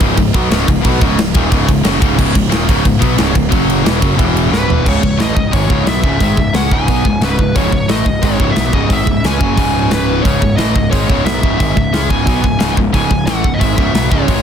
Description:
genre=heavy metal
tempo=178 BPM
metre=4/4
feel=straight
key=C# minor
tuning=A4 = 441 Hz
part: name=distorted electric guitar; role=riff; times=0.0-14.4 s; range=C#2 to C#4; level=-20 LUFS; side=right 14 dB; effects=overdrive
part: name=tight distorted guitar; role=riff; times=0.0-14.4 s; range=C#2 to C#4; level=-19 LUFS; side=left 14 dB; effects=distortion
part: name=fuzz picked electric bass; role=bass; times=0.0-14.4 s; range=C#1 to C#2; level=-18 LUFS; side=equal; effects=overdrive
part: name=tight metal drum kit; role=drums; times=0.0-14.4 s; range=crash cymbal, hi-hat, kick drum, ride cymbal, snare drum, toms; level=-15 LUFS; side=equal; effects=none
part: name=fuzz guitar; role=riff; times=2.2-14.4 s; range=C#2 to C#4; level=-21 LUFS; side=equal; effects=distortion
part: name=high-gain lead guitar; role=melody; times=4.5-14.4 s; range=B4 to G#5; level=-20 LUFS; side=equal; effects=distortion
room=little or no reverb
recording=dense, heavily limited modern master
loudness=-11 LUFS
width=side -8 dB against mid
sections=0.0-4.9 A section; 4.9-14.4 B section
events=drum fill 4.5-4.9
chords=0.0 C#5; 3.5 F#5; 3.9 C#m; 4.2 E5; 4.5 C#m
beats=0.17 0.51 | 0.84 1.18 1.51 1.85 | 2.18 2.52 2.85 3.19 | 3.52 3.85 4.19 4.53 | 4.86 5.20 5.53 5.87 | 6.21 6.54 6.88 7.22 | 7.55 7.89 8.23 8.56 | 8.90 9.24 9.57 9.91 | 10.25 10.58 10.92 11.26 | 11.59 11.93 12.27 12.60 | 12.94 13.28 13.61 13.95 | 14.29

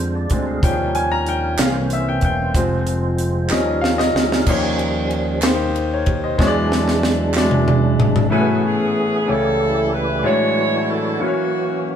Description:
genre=slow gospel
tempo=62 BPM (dotted quarters)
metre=6/8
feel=straight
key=A major from 8.3 s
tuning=A4 = 439 Hz
part: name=clear baby grand piano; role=accompaniment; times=0.0-12.0 s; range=A2 to Bb5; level=-21 LUFS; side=left 2 dB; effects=none
part: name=percussive tonewheel organ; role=sustained chords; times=0.0-12.0 s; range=C#2 to F5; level=-24 LUFS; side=right 2 dB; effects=slow rotary speaker, chorus vibrato
part: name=modern bright fingered electric bass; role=bass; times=0.0-8.3 s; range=E1 to F2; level=-23 LUFS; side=equal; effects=none
part: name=crisp fusion drum kit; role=drums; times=0.3-8.3 s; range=crash cymbal, hi-hat, kick drum, ride cymbal, snare drum, toms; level=-20 LUFS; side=right 1 dB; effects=none
part: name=group handclap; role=percussion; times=1.6-7.6 s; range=none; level=-28 LUFS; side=right 4 dB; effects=none
part: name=warm saxophone section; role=melody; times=8.3-12.0 s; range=A#3 to C#5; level=-20 LUFS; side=right 3 dB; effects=none
room=moderate stone room reverb, RT60 0.9 s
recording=band playing live in one room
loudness=-16 LUFS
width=side -8 dB against mid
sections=0.0-4.5 A section; 4.5-8.3 B section; 8.3-12.0 C section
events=grand piano solo 0.0-4.5; drum fill 3.5-4.5, 6.4-8.3; tonewheel organ solo 4.5-8.3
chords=0.0 Bb7/F (rootless); 0.6 Eb7; 1.6 C7b9; 2.6 Fm; 3.5 Eb7; 6.4 E9; 8.3 Amaj9; 9.3 A7/C#; 10.2 Dmaj9#11/A; 11.2 F#7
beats=| 0.64 1.59 | 2.55 3.51 | 4.47 5.43 | 6.39 7.35 | 8.31 9.28 | 10.24 11.20

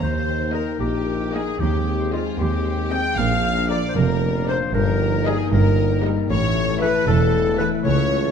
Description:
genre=cinematic, playful, whimsical film cue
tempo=77 BPM (dotted quarters)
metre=6/8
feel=straight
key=Eb major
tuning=A4 = 440 Hz
part: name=mellow clarinet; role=second line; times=0.0-8.3 s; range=F4 to G5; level=-25 LUFS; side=left 2 dB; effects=none
part: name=warm studio violin section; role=second line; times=0.0-8.3 s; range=F4 to G5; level=-29 LUFS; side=left 4 dB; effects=none
part: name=dark French horn section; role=sustained chords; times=0.0-8.3 s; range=Ab3 to E4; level=-27 LUFS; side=left 8 dB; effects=none
part: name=concert harp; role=arpeggios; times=0.0-8.3 s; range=G2 to C6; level=-28 LUFS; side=left 5 dB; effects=none
part: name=clear tuba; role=bass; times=0.0-8.3 s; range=E1 to Eb2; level=-27 LUFS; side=right 4 dB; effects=none
part: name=warm chamber cello section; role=bass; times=0.0-8.3 s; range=C#2 to Bb2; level=-26 LUFS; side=right 3 dB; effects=none
part: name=warm studio double bass section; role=bass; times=0.0-8.3 s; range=E1 to Eb2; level=-25 LUFS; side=right 4 dB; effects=none
part: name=warm studio violin section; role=melody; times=0.5-7.8 s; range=D5 to E5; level=-34 LUFS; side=left 6 dB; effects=none
part: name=warm studio viola section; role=accompaniment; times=0.5-7.8 s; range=E3 to Bb4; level=-33 LUFS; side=equal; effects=none
room=wet scoring stage reverb, RT60 1.7 s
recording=none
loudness=-18 LUFS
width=side -7 dB against mid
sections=0.0-8.3 A section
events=none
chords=0.0 Eb; 1.6 Abmaj7/Eb; 3.2 Bb; 4.7 Eb/G; 6.3 A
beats=| 0.02 0.81 | 1.61 2.39 | 3.18 3.96 | 4.74 5.52 | 6.30 7.08 | 7.85

